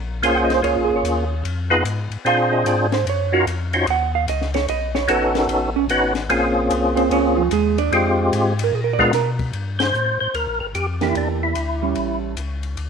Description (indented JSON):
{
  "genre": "soul jazz organ trio",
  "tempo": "148 BPM",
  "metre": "4/4",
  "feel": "swing 65% on 8ths",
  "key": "G dorian from 9.5 s",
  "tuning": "A4 = 443 Hz",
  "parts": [
    { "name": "tonewheel organ", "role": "bass", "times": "0.0-12.9 s", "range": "G1 to Cb3", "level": "-24 LUFS", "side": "left 2 dB", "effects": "chorus vibrato, slow rotary speaker" },
    { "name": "percussive tonewheel organ", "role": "melody", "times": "0.2-12.2 s", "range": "Ab3 to C5", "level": "-19 LUFS", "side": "left 1 dB", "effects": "slow rotary speaker, chorus vibrato, slapback echo" },
    { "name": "compact cocktail drum kit", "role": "drums", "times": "0.2-12.9 s", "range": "hi-hat, kick drum, ride cymbal, snare drum", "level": "-31 LUFS", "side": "left 8 dB", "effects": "none" },
    { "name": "hollow-body jazz guitar", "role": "accompaniment", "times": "0.3-12.3 s", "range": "E3 to Gb5", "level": "-22 LUFS", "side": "right 12 dB", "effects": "none" }
  ],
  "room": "moderate spring reverb, RT60 1.3 s, small room reverb",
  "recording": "1960s-style stereo with parts hard left and right",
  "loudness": "-17 LUFS",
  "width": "side -6 dB against mid",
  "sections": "0.0-9.5 A section; 9.5-12.9 B section",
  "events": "hollow-body jazz guitar solo 0.0-9.5; band accent 9.7",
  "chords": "0.0 Bbm9; 1.4 Fm7b5; 2.3 Bb7; 3.1 Ebm7; 4.7 B9; 6.3 Bbm7; 7.9 Fm; 8.7 Bb7b9; 9.5 Gmadd9; 11.2 Em7b5; 12.0 A7",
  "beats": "0.23 0.64 1.04 | 1.45 1.85 2.26 2.66 | 3.06 3.47 3.87 4.28 | 4.68 5.09 5.49 5.90 | 6.30 6.70 7.11 7.51 | 7.92 8.32 8.72 9.13 | 9.53 9.94 10.34 10.74 | 11.15 11.55 11.96 12.36 | 12.77"
}